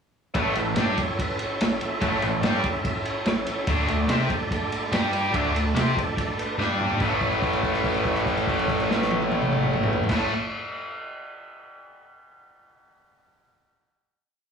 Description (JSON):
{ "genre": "blues rock power trio and southern rock", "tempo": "144 BPM", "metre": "4/4", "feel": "straight", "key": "A mixolydian", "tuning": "A4 = 440 Hz", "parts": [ { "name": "overdriven tonewheel organ", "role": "sustained chords", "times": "0.3-10.3 s", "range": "G3 to E5", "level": "-30 LUFS", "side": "right 2 dB", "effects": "chorus vibrato, fast rotary speaker" }, { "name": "tight distorted guitar", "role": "riff", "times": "0.3-10.3 s", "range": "A2 to C5", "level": "-26 LUFS", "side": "left 1 dB", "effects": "distortion, slapback echo" }, { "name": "gritty driven synth bass", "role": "bass", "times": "0.3-10.3 s", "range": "A1 to C3", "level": "-28 LUFS", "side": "equal", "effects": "none" }, { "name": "vintage drum kit", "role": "drums", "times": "0.3-10.2 s", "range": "crash cymbal, kick drum, ride cymbal, snare drum, toms", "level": "-27 LUFS", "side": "equal", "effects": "none" } ], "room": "light reverb, small room ambience", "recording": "live gig heard through the venue's PA, club reverb, small room reverb", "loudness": "-22 LUFS", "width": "side -6 dB against mid", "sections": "0.4-7.0 riff; 7.0-10.3 final chord", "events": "drum fill 6.6-7.0; held note 7.0-10.1", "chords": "0.4 A; 3.7 D5; 4.9 G5; 5.3 D5; 6.6 G5; 7.0 A" }